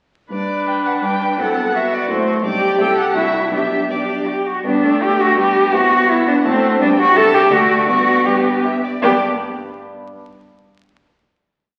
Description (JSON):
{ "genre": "quick classical-period movement for piano quartet", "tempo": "154-173 BPM", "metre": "3/4", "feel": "rubato", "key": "G major", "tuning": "A4 = 440 Hz", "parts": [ { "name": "rich violin", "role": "melody", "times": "0.3-9.2 s", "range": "B4 to A5", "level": "-25 LUFS", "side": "equal", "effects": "none" }, { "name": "clear cello", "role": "second line", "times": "0.3-9.2 s", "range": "C4 to B4", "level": "-18 LUFS", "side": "equal", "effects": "none" }, { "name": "dark grand piano", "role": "accompaniment", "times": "0.3-9.2 s", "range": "B1 to D5", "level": "-28 LUFS", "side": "equal", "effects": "none" }, { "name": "rich viola", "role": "accompaniment", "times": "0.3-9.2 s", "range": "G3 to A4", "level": "-24 LUFS", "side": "equal", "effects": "none" } ], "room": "wet scoring stage reverb, RT60 1.6 s", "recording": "very old 78 rpm record, vinyl crackle", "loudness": "-16 LUFS", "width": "mono", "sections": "0.3-4.7 A section; 4.7-9.0 A section; 9.0-10.2 final chord", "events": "none", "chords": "0.3 G; 1.4 F#dim/A; 2.4 G/B; 2.8 Am7/C; 3.2 D7/C; 3.5 G/B; 4.7 G; 5.7 F#dim/A; 6.8 G; 7.2 C; 7.5 D; 7.9 G" }